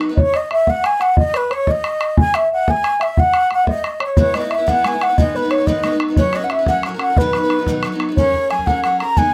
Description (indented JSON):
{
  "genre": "celtic folk, Celtic jig",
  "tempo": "120 BPM (dotted quarters)",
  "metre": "6/8",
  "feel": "straight",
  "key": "B major",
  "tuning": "A4 = 437 Hz",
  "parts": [
    { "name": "picked steel-string acoustic guitar", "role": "accompaniment", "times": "0.0-0.2, 4.2-9.3 s", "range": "G#2 to B4", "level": "-24 LUFS", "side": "equal", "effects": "none" },
    { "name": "bodhran", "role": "percussion", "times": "0.0-9.2 s", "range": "none", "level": "-21 LUFS", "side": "equal", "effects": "none" },
    { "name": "baroque flute", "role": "melody", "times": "0.1-9.3 s", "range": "B4 to A#5", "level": "-20 LUFS", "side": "equal", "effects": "none" },
    { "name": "celesta", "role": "second line", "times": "0.2-9.3 s", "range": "B4 to A#5", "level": "-24 LUFS", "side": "equal", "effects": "none" }
  ],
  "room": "moderate small room reverb, RT60 0.5 s",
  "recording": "close, detailed microphones",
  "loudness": "-17 LUFS",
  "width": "mono",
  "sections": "0.2-8.2 A section; 8.2-9.3 B section",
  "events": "none",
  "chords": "0.2 N.C.; 4.2 E; 5.2 G#m; 6.2 F#sus4; 6.7 F#; 7.2 B; 8.2 F#add9"
}